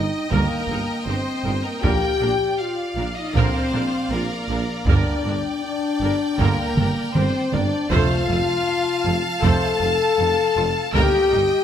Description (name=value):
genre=cinematic, epic orchestral film score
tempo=79 BPM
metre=4/4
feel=straight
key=F mixolydian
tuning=A4 = 440 Hz
part: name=rich symphonic violin section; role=melody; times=0.0-11.6 s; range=Bb4 to A5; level=-28 LUFS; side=left 2 dB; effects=none
part: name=rich studio violin section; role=second line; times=0.0-11.6 s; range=D5 to A5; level=-30 LUFS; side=equal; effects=none
part: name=mellow French horn section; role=sustained chords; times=0.0-11.6 s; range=Bb3 to A4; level=-23 LUFS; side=left 4 dB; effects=none
part: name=mellow tuba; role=bass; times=0.0-11.5 s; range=F1 to Bb1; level=-30 LUFS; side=right 4 dB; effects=none
part: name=rich symphonic cello section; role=bass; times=0.0-11.4 s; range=F2 to Bb2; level=-27 LUFS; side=right 3 dB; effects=none
part: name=rich symphonic viola section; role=accompaniment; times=0.3-11.4 s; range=D4 to C5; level=-29 LUFS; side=right 1 dB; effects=none
part: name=brilliant trombone section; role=sustained chords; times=0.3-11.2 s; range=C3 to Bb3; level=-33 LUFS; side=right 4 dB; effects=none
part: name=clear chamber double bass section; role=bass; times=0.3-11.4 s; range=F1 to Bb1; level=-28 LUFS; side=right 3 dB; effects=none
part: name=taiko ensemble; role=drums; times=0.3-11.6 s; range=none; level=-23 LUFS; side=right 1 dB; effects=none
part: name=timpani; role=percussion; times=7.9-9.0 s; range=F2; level=-28 LUFS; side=equal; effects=none
room=moderate scoring stage reverb, RT60 1.7 s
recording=none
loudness=-18 LUFS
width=side -9 dB against mid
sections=0.0-11.6 A section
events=drum fill 6.8-7.9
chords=0.0 Eb/G; 1.8 Bb; 4.9 Gm; 7.9 F; 10.9 Eb/G